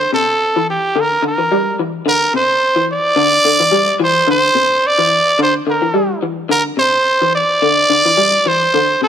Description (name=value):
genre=afrobeat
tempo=108 BPM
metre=4/4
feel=swing 56% on 16ths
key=C mixolydian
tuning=A4 = 440 Hz
part: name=growling trumpet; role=melody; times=0.0-9.1 s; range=G4 to D5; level=-12 LUFS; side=right 1 dB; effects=none
part: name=electric guitar through a small old amp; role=arpeggios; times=0.0-9.1 s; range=C3 to G3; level=-18 LUFS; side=left 3 dB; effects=ensemble chorus
room=moderate echo chamber reverb, RT60 1.8 s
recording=none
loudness=-11 LUFS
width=side -9 dB against mid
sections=0.0-9.1 A section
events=none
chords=0.0 C